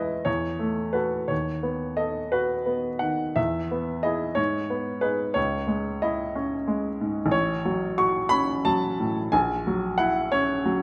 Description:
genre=classical, romantic character piece for solo piano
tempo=60 BPM (dotted quarters)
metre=6/8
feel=rubato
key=unclear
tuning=A4 = 442 Hz
part: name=clear baby grand piano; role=solo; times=0.0-10.8 s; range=A1 to C#6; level=-26 LUFS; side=equal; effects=none
room=moderate recital hall reverb, RT60 1.3 s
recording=close, detailed microphones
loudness=-26 LUFS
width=mono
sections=0.0-10.8 A section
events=none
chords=0.3 F#m7/E; 1.3 B7/D#; 3.4 E; 4.4 G#m; 5.4 C#m; 7.3 F#m/A; 9.3 F#7/A#

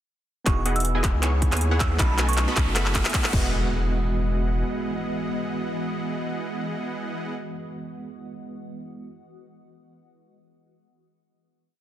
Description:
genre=future bass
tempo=157 BPM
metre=4/4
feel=swing 53% on 16ths, half-time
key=E major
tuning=A4 = 440 Hz
part: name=overdriven tine electric piano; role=accompaniment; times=0.4-9.1 s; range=G#3 to D#5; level=-33 LUFS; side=right 4 dB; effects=medium tremolo, sidechain pumping, tape echo
part: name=glassy synth bell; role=melody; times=0.5-2.7 s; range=B5 to E6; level=-32 LUFS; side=right 3 dB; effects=chorus, sidechain pumping, tape echo
part: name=shimmering ambient pad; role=sustained chords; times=1.6-7.3 s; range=E3 to D#5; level=-35 LUFS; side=left 1 dB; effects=chorus, built-in reverb, phaser, sidechain pumping
part: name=supersaw stab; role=riff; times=0.5-7.3 s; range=B3 to C#6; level=-31 LUFS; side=equal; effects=sidechain pumping, low-pass filter, tape echo
part: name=saturated sub bass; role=bass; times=0.5-4.6 s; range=E1 to D#2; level=-24 LUFS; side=equal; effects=tube saturation, sidechain pumping
part: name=electronic kick drum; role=drums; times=0.5-3.4 s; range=none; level=-24 LUFS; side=equal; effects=overdrive
part: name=trap drum kit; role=drums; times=0.5-3.4 s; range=crash cymbal, handclaps, hi-hat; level=-27 LUFS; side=equal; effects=overdrive
part: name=riser and impact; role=sound effects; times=1.1-7.5 s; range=none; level=-35 LUFS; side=equal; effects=none
room=light reverb, digital ambience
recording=dense, heavily limited modern master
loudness=-22 LUFS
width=side -12 dB against mid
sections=0.5-3.5 build; 3.5-6.6 final hit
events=build-up 0.5-3.5; drum fill 0.5-3.5; filter sweep on supersaw synth 0.5-3.5; riser 1.1-3.5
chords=0.5 Emaj9; 1.2 C#m7; 2.0 B7; 2.8 F#m11; 3.3 Emaj9

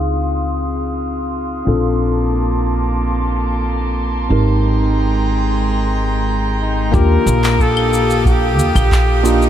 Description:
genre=sunset chillout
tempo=91 BPM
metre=4/4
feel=straight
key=unclear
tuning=A4 = 442 Hz
part: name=tine electric piano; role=accompaniment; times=0.0-9.5 s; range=Bb3 to Bb4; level=-20 LUFS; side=moving between left 6 dB and right 5 dB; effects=auto-pan, diffuse ambient delay
part: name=airy breathy pad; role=sustained chords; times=0.0-9.5 s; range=Ab3 to Eb6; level=-22 LUFS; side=equal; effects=chorus
part: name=upright bass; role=bass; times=0.0-9.5 s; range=Ab1 to Eb2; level=-17 LUFS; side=equal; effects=none
part: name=clear flugelhorn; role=melody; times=6.6-9.5 s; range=Eb4 to Bb4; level=-19 LUFS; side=equal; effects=diffuse ambient delay
part: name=electronic kick drum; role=drums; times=6.9-9.1 s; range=none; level=-16 LUFS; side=equal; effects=small room ambience
part: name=electronic shaker, handclaps and claves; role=drums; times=6.9-9.5 s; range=none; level=-24 LUFS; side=left 2 dB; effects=small room ambience
room=moderate huge ambient reverb, RT60 7.9 s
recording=dreamy mix soaked in reverb, low-pass filter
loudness=-14 LUFS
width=side -10 dB against mid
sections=0.0-6.9 A section; 6.9-9.5 B section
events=filter sweep 0.0-6.9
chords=0.0 Dbmaj9; 1.7 Bbmaj9; 4.3 Abmaj9; 6.9 Ebmaj9

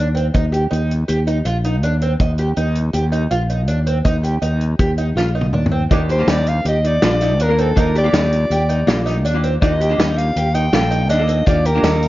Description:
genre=progressive instrumental, band music in an uneven meter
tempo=162 BPM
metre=5/4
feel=straight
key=Eb lydian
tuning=A4 = 440 Hz
part: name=picked twelve-string acoustic guitar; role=arpeggios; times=0.0-12.0 s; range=C4 to G4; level=-22 LUFS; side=right 2 dB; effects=slapback echo
part: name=fretless electric bass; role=bass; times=0.0-12.1 s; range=Bb1 to Eb2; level=-18 LUFS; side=equal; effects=none
part: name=natural country drum kit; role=drums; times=0.2-12.1 s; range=hi-hat, kick drum, snare drum, toms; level=-20 LUFS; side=equal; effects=none
part: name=hollow-body jazz guitar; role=accompaniment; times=5.9-12.1 s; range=Bb3 to Bb4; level=-23 LUFS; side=equal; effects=double-tracked left and right
part: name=breathy soprano saxophone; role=melody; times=6.1-12.1 s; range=A4 to G5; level=-20 LUFS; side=equal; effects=none
room=light reverb, studio ambience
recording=worn, warbling old tape, cassette tape, warbly pitch drift, nothing above 7.5 kHz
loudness=-15 LUFS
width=side -16 dB against mid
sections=0.0-5.9 A section; 5.9-12.1 B section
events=drum fill 5.2-5.9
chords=0.0 Eb5; 5.9 Ebmaj7

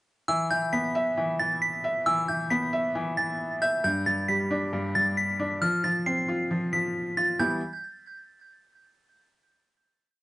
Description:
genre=hip hop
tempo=135 BPM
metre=4/4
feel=half-time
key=E phrygian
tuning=A4 = 440 Hz
part: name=delicate synth tine bell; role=melody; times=0.3-7.6 s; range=E6 to C7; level=-27 LUFS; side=equal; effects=chorus, phaser, cassette tape, tape echo
part: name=felt-muted upright piano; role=accompaniment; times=0.3-7.6 s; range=G2 to E5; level=-27 LUFS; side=equal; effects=cassette tape
room=light reverb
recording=home recording on cassette, nothing above 10.7 kHz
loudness=-24 LUFS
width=side -18 dB against mid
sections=0.3-7.4 hook; 7.4-9.2 final chord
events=none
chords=0.3 E5; 3.8 G; 5.6 F5; 7.4 Em

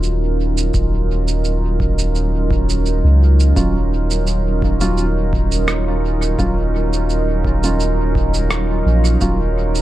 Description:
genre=ambient dub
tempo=85 BPM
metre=4/4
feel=swing 53% on 16ths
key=Eb minor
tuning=A4 = 440 Hz
part: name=warbly tape-like pad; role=sustained chords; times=0.0-9.8 s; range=Gb3 to Bb4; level=-21 LUFS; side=right 3 dB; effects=chorus, built-in reverb
part: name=soft dub sub bass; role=bass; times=0.0-9.8 s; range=Eb1 to Db2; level=-17 LUFS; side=equal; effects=none
part: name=electronic shaker and rim click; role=drums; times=0.0-9.8 s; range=none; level=-25 LUFS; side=right 3 dB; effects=overdrive, dub echo
part: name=electronic kick drum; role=drums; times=0.7-9.4 s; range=none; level=-22 LUFS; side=equal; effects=overdrive
part: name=dark upright piano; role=stabs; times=3.6-9.4 s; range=Gb3 to F4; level=-24 LUFS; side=right 1 dB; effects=dub echo
room=little or no reverb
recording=none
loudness=-15 LUFS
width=side -14 dB against mid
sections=0.0-9.8 A section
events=none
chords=0.0 Ebm9

